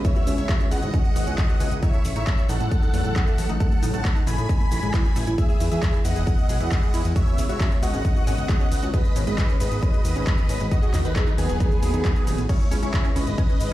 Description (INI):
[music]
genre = uplifting trance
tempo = 135 BPM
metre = 4/4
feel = straight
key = C# minor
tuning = A4 = 443 Hz
[part]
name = big supersaw lead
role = melody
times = 0.0-13.7 s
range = B3 to B5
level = -30 LUFS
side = equal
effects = phaser, sidechain pumping, tape echo
[part]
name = analog string pad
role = sustained chords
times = 0.0-13.7 s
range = C#3 to F#4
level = -34 LUFS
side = left 1 dB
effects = ensemble chorus, phaser, sidechain pumping
[part]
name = fat analog bass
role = bass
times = 0.0-13.7 s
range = D#1 to A2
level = -24 LUFS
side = equal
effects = sidechain pumping
[part]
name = big-room dance drum kit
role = drums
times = 0.0-13.7 s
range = crash cymbal, handclaps, hi-hat, ride cymbal, shaker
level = -34 LUFS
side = left 1 dB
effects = overdrive, sidechain pumping on hats, sidechain pumping on perc, sidechain pumping on cymbals
[part]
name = electronic kick drum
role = drums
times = 0.0-13.5 s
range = none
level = -21 LUFS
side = equal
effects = overdrive
[part]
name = tight sequenced synth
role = arpeggios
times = 0.2-13.6 s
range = G#3 to G#4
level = -33 LUFS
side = right 1 dB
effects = chorus, phaser, vintage 12-bit sampler grit, sidechain pumping, dub echo
[sound]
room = digital ambience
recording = played on a big sound system in a bare room, large studio reverb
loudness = -20 LUFS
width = side -15 dB against mid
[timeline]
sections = 0.0-13.7 A section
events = none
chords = 0.0 C#m7; 1.8 A6; 5.4 Emaj7; 7.2 C#m7; 8.9 G#m7; 10.7 D#dim; 12.5 C#m7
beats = | 0.05 0.49 0.94 1.38 | 1.83 2.27 2.71 3.16 | 3.60 4.05 4.49 4.94 | 5.38 5.83 6.27 6.71 | 7.16 7.60 8.05 8.49 | 8.94 9.38 9.83 10.27 | 10.71 11.16 11.60 12.05 | 12.49 12.94 13.38